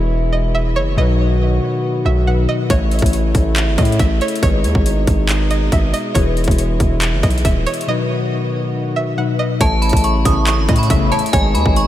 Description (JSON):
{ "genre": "hip hop, trap", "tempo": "139 BPM", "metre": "4/4", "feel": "half-time", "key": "unclear", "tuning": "A4 = 437 Hz", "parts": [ { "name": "string-like resonator pluck", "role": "second line", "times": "0.0-11.9 s", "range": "C#5 to F#5", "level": "-24 LUFS", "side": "right 2 dB", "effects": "chorus, diffuse ambient delay" }, { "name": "mellow tine electric piano", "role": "accompaniment", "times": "0.0-11.9 s", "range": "B2 to E5", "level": "-22 LUFS", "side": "left 4 dB", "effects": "ensemble chorus" }, { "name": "warm brass ensemble", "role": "sustained chords", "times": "0.0-11.9 s", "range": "B2 to F#4", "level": "-24 LUFS", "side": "right 1 dB", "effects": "stereo widening" }, { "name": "distorted 808-style bass", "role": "bass", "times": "0.0-11.9 s", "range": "D#1 to A2", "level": "-17 LUFS", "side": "equal", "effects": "distortion" }, { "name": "trap drum kit", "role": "drums", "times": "2.7-11.9 s", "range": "handclaps, hi-hat, kick drum", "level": "-18 LUFS", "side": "equal", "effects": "overdrive" }, { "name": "metallic FM bell", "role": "melody", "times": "9.6-11.9 s", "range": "G#5 to D#6", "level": "-19 LUFS", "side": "equal", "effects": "chorus, phaser, diffuse ambient delay" }, { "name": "big bright polysynth", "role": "stabs", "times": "10.3-11.2 s", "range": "A1 to C#3", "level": "-24 LUFS", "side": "left 2 dB", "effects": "wide subtle chorus" } ], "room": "light reverb", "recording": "none", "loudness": "-14 LUFS", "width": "side -13 dB against mid", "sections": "0.0-9.6 A section; 9.6-11.9 B section", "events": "break 7.9-9.6", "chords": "0.0 E; 1.0 B; 2.7 A; 4.4 G#m; 6.2 E; 7.9 B; 9.6 A; 11.3 G#m" }